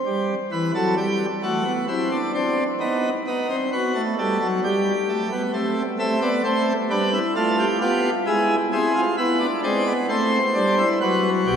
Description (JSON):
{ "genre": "classical, baroque-style 4-part fugue for pipe organ", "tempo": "66 BPM", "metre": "3/4", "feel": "straight", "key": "A minor", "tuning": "A4 = 442 Hz", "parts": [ { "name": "pipe organ, plenum", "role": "solo", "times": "0.1-11.6 s", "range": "B1 to E5", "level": "-19 LUFS", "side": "equal", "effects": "none" } ], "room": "wet cathedral reverb, RT60 6.1 s", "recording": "heard from further back in the room", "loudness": "-19 LUFS", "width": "side -8 dB against mid", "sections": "0.0-11.6 A section", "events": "none", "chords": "0.1 Em; 1.9 Cadd9; 2.8 B7; 4.6 Gadd9; 5.5 Am; 7.4 G9/A; 8.3 E7/G#; 10.1 Am; 11.0 Gmaj7/F#" }